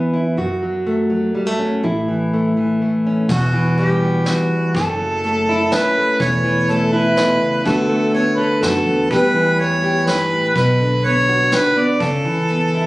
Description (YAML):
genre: acoustic folk duo or small band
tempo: 124 BPM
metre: 3/4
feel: straight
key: E dorian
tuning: A4 = 441 Hz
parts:
  - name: nylon-string guitar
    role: accompaniment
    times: 0.0-12.9 s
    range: E2 to A4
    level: -17 LUFS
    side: equal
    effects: none
  - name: upright bass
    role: bass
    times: 0.4-12.9 s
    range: E1 to F#2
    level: -24 LUFS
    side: equal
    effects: none
  - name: mellow harmonica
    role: second line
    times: 3.3-12.9 s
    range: F#4 to D5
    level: -18 LUFS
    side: equal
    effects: slapback echo
  - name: vintage brush drum kit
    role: drums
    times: 3.3-12.6 s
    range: crash cymbal, hi-hat, kick drum, snare drum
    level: -25 LUFS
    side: equal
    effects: none
room: moderate studio reverb, RT60 0.8 s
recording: recorded on a phone in the room, studio reverb, compression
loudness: -15 LUFS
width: side -19 dB against mid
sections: 0.0-3.3 A section; 3.3-12.9 B section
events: none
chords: 0.4 F#m; 1.8 A; 3.3 Emadd9; 4.7 F#m7; 6.2 A/E; 7.7 D6; 9.1 Em; 10.6 Bm; 12.0 Aadd9/C#